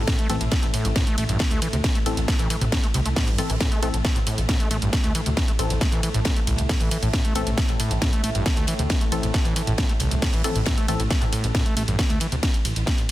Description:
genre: driving peak-time techno.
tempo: 136 BPM.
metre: 4/4.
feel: straight.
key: A minor.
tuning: A4 = 438 Hz.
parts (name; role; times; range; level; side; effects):
overdriven acid bass; riff; 0.0-12.4 s; A1 to A3; -28 LUFS; equal; distortion, sidechain pumping, tape echo.
dark detuned saw bass; bass; 0.0-13.1 s; A1 to D2; -26 LUFS; equal; sidechain pumping.
analog drone; drone; 0.0-13.1 s; A2 to A3; -33 LUFS; equal; chorus, sidechain pumping.
electronic kick drum; drums; 0.1-13.0 s; none; -23 LUFS; equal; distortion, overdrive.
open jazz drum kit; drums; 0.1-13.1 s; hi-hat, ride cymbal, snare drum; -39 LUFS; left 2 dB; none.
techno drum kit; drums; 0.1-13.1 s; hi-hat, ride cymbal, snare drum; -27 LUFS; equal; overdrive, sidechain pumping on hats, sidechain pumping on cymbals.
wavetable chord stab; stabs; 0.3-11.0 s; E3 to A4; -32 LUFS; left 3 dB; sidechain pumping, tape echo.
room: little or no reverb.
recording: dense, heavily limited modern master.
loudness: -20 LUFS.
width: side -15 dB against mid.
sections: 0.0-13.1 A section.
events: none.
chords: 0.0 Am.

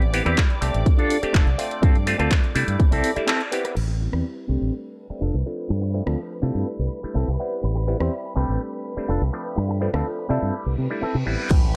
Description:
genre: filtered disco house.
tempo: 124 BPM.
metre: 4/4.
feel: straight.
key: A minor.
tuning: A4 = 440 Hz.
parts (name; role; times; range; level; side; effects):
auto-wah clav; accompaniment; 0.0-11.7 s; F3 to B4; -31 LUFS; equal; phaser, sidechain pumping, low-pass filter.
rich studio violin section; sustained chords; 0.0-11.8 s; A4 to D6; -38 LUFS; equal; sidechain pumping, low-pass filter.
electric guitar with an envelope filter; riff; 0.0-11.4 s; C4 to D5; -29 LUFS; equal; vintage 12-bit sampler grit, sidechain pumping, low-pass filter.
fingered electric bass with an envelope filter; bass; 0.0-11.8 s; F1 to C3; -26 LUFS; equal; sidechain pumping, low-pass filter.
house drum kit; drums; 0.0-11.6 s; crash cymbal, handclaps, hi-hat, rim click; -32 LUFS; equal; sidechain pumping on hats, studio reverb, sidechain pumping on cymbals.
electronic kick drum; drums; 0.4-2.9, 11.5-11.6 s; none; -20 LUFS; equal; studio reverb.
reverse cymbal and sub drop; sound effects; 10.8-11.8 s; none; -35 LUFS; equal; none.
room: little or no reverb.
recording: none.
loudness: -23 LUFS.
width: mono.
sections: 0.0-3.8 A section; 3.8-11.5 B section.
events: break 3.3-3.8; band accent 3.3; filter sweep 3.8-11.5; reverse cymbal 10.8-11.5; impact 11.5.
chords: 0.0 Am9; 0.9 F6; 1.8 G9sus4; 2.8 C6; 3.8 Am9; 4.7 F6; 5.7 G9sus4; 6.7 C6; 7.6 Am9; 8.6 F6; 9.6 G9sus4; 10.5 Am9.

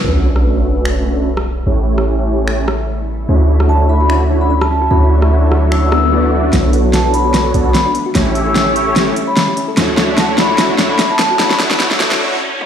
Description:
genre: future bass.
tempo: 148 BPM.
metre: 4/4.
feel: swing 55% on 16ths, half-time.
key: D major.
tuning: A4 = 438 Hz.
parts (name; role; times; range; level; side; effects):
shimmering ambient pad; sustained chords; 1.2-12.2 s; D3 to C#5; -25 LUFS; equal; chorus, built-in reverb.
supersaw chords; riff; 0.0-12.4 s; A3 to D5; -17 LUFS; right 1 dB; analog chorus, low-pass filter, digital delay.
warm 808-style bass; bass; 0.0-12.2 s; A1 to D2; -15 LUFS; equal; none.
sub drop, swell and riser; sound effects; 0.0-1.7, 5.8-12.7 s; none; -23 LUFS; left 1 dB; none.
pop drum kit; drums; 0.4-12.7 s; finger snaps, hi-hat, rim click, snare drum, toms; -17 LUFS; equal; studio reverb.
thumb-piano-like synth pluck; arpeggios; 3.3-12.2 s; B3 to C#5; -24 LUFS; left 2 dB; chorus, digital delay.
vibraphone with medium mallets; melody; 3.7-11.6 s; A5 to E6; -19 LUFS; left 2 dB; dub echo.
room: moderate lush hall reverb, RT60 1.8 s.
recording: played on a big sound system in a bare room, stone room reverb, high-pass filter.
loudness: -11 LUFS.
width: side -8 dB against mid.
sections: 0.0-6.5 A section; 6.5-12.7 B section.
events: impact 0.0-1.7; filter sweep on ambient pad 0.0-6.5; swell 5.8-6.5; build-up 6.5-12.7; drum fill 6.5-12.2; filter sweep on supersaw synth 6.5-12.7; filter sweep on synth arpeggio sound 6.5-12.7; filter sweep 6.5-12.7; break 12.2-12.7.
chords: 0.0 Bm9; 1.7 A7; 3.3 Dmaj9; 6.5 Bm9; 8.2 A7; 9.8 Dmaj9.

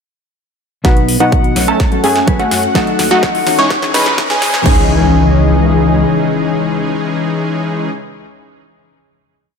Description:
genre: EDM, festival progressive house.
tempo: 126 BPM.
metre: 4/4.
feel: straight.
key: C# minor.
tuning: A4 = 438 Hz.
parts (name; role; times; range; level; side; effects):
mellow electric guitar; accompaniment; 0.8-7.9 s; B2 to D#5; -16 LUFS; left 4 dB; sidechain pumping.
lush unison pad; sustained chords; 1.6-7.9 s; C#3 to F#5; -22 LUFS; right 1 dB; chorus, sidechain pumping.
dark grand piano; arpeggios; 0.8-7.9 s; F#5 to C#6; -18 LUFS; left 1 dB; sidechain pumping, ping-pong delay.
supersaw stab; riff; 0.8-7.9 s; E3 to C#5; -17 LUFS; right 1 dB; sidechain pumping, low-pass filter, ping-pong delay.
big-room dance drum kit; drums; 0.8-4.8 s; crash cymbal, hi-hat, snare drum; -20 LUFS; left 1 dB; high-pass filter on snare, high-pass filter on hats, high-pass filter on cymbals.
electronic kick drum; drums; 0.8-4.8 s; none; -14 LUFS; right 1 dB; none.
riser and impact; sound effects; 2.3-7.9 s; none; -24 LUFS; equal; none.
wide detuned saw bass; bass; 1.1-6.0 s; B1 to F#2; -16 LUFS; right 1 dB; chorus, sidechain pumping.
room: light reverb, digital ambience.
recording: high-pass filter.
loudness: -10 LUFS.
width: side -6 dB against mid.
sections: 0.8-4.7 build; 4.7-8.5 final chord.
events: build-up 0.8-4.7; drum fill 0.8-4.7; filter sweep on supersaw synth 0.8-4.7; filter sweep 0.8-4.7.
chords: 0.8 B; 1.8 F#m; 2.8 D#dim; 3.7 C#madd9.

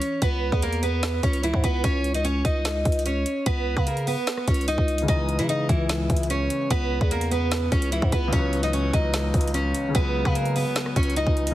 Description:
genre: hip hop, trap.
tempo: 148 BPM.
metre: 4/4.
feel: half-time.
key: C# dorian.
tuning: A4 = 440 Hz.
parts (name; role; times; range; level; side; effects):
picked steel-string acoustic guitar; melody; 0.0-11.5 s; E3 to D#5; -26 LUFS; right 1 dB; none.
trap drum kit; drums; 0.0-11.5 s; hi-hat, kick drum, rim click, snare drum; -25 LUFS; equal; none.
growling 808-style bass; bass; 0.2-11.5 s; C#2 to C#3; -26 LUFS; equal; none.
warm concert grand piano; accompaniment; 5.0-11.5 s; C#2 to B3; -30 LUFS; left 3 dB; none.
room: digital ambience.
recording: heavily compressed radio sound.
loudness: -21 LUFS.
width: side -14 dB against mid.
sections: 0.0-11.5 A section.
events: none.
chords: 0.0 C#m7; 1.8 C#sus2; 5.1 C#m7; 8.3 F#7sus4/C#; 9.9 G#m7/C#.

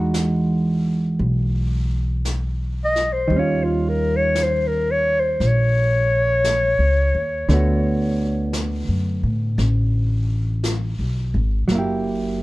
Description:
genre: jazz ballad.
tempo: 57 BPM.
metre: 4/4.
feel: swing 66% on 8ths.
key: unclear.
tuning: A4 = 440 Hz.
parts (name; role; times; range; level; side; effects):
hollow-body jazz guitar; accompaniment; 0.0-12.4 s; D3 to G4; -23 LUFS; right 2 dB; none.
upright bass; bass; 0.0-12.4 s; F#1 to A2; -21 LUFS; equal; none.
jazz brush drum kit; drums; 0.1-12.4 s; brushed snare drum, hi-hat, snare drum; -32 LUFS; left 1 dB; none.
warm clarinet; melody; 2.8-8.6 s; E#4 to D#5; -20 LUFS; left 1 dB; plate reverb.
room: light reverb.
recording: dark, warm production.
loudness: -18 LUFS.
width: side -19 dB against mid.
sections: 0.0-12.4 A section.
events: clarinet solo 0.0-12.4.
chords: 0.0 Emaj9; 3.3 D#9; 7.5 D6; 11.7 F#7b9.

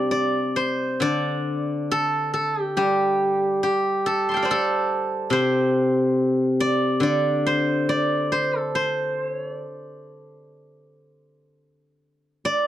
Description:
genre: chinese traditional, Chinese solo plucked strings.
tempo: 60-72 BPM.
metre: 4/4.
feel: rubato.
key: D yu mode.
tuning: A4 = 439 Hz.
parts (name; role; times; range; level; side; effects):
steel-string zither; solo; 0.0-12.7 s; C3 to C6; -20 LUFS; equal; none.
room: light reverb.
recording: dry, close 1970s-style studio recording.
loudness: -20 LUFS.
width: side -12 dB against mid.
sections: 0.0-12.4 A section.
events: none.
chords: none.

